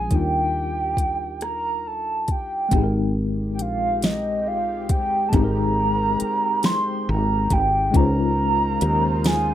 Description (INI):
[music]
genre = slow six-eight R&B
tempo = 46 BPM (dotted quarters)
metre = 6/8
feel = straight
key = Ab major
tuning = A4 = 439 Hz
[part]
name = hollow clarinet-like synth lead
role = melody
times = 0.0-9.5 s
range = Eb5 to C6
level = -23 LUFS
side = right 2 dB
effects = chorus, slapback echo
[part]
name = tine electric piano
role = accompaniment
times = 0.0-9.5 s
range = F3 to C5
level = -26 LUFS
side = left 4 dB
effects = medium stereo tremolo
[part]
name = woody fretless electric bass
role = bass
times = 0.0-9.5 s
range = Ab1 to Eb2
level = -24 LUFS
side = equal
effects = none
[part]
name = smooth R&B drum kit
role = drums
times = 0.1-9.5 s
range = hi-hat, kick drum, rim click, snare drum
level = -22 LUFS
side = equal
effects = none
[part]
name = lush unison pad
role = sustained chords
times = 3.3-9.5 s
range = Db3 to C5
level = -35 LUFS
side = right 1 dB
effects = chorus
[sound]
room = moderate studio reverb, RT60 0.6 s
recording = rough home demo mix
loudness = -19 LUFS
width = side -12 dB against mid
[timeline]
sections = 0.0-2.7 A section; 2.7-9.5 B section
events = none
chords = 0.1 Ebmaj9; 2.7 Abmaj9; 7.9 Dbmaj9